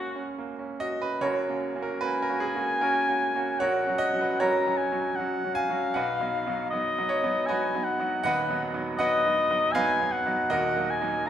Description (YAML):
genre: classical, romantic duo for oboe and grand piano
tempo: 78 BPM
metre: 3/4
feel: rubato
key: F# major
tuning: A4 = 439 Hz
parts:
  - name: warm oboe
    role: melody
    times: 0.0-11.3 s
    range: F#4 to A#5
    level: -27 LUFS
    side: left 2 dB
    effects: none
  - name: bright baby grand piano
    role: accompaniment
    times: 0.0-11.3 s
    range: D#1 to G#5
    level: -27 LUFS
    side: right 2 dB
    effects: none
room: wet recital hall reverb, RT60 1.5 s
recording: none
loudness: -24 LUFS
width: side -10 dB against mid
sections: 0.0-1.2 A section; 1.2-11.3 B section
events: none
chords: 0.0 F#; 3.6 F#/A#; 5.9 B; 8.2 B/D#; 10.5 Ebm